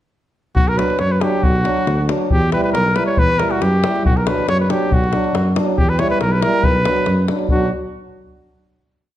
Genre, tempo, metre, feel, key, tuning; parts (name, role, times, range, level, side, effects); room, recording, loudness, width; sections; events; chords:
balkan folk, Balkan brass band; 139 BPM; 2/4; straight; B harmonic minor; A4 = 442 Hz
dark tuba; bass; 0.5-7.7 s; B1 to F#2; -20 LUFS; equal
warm cornet; melody; 0.6-7.7 s; F#4 to C#5; -19 LUFS; equal
davul; percussion; 0.6-7.7 s; -20 LUFS; left 2 dB
warm euphonium; accompaniment; 0.8-7.7 s; F#3 to G3; -24 LUFS; right 5 dB
warm trombone; accompaniment; 0.8-7.7 s; D4 to E4; -25 LUFS; left 6 dB
wet recital hall reverb, RT60 1.3 s; dark, warm production; -14 LUFS; side -12 dB against mid
0.6-7.5 A section; 7.5-8.4 final chord
0.6 Bm; 2.3 Em; 4.0 Bm; 5.8 Em; 6.6 Bm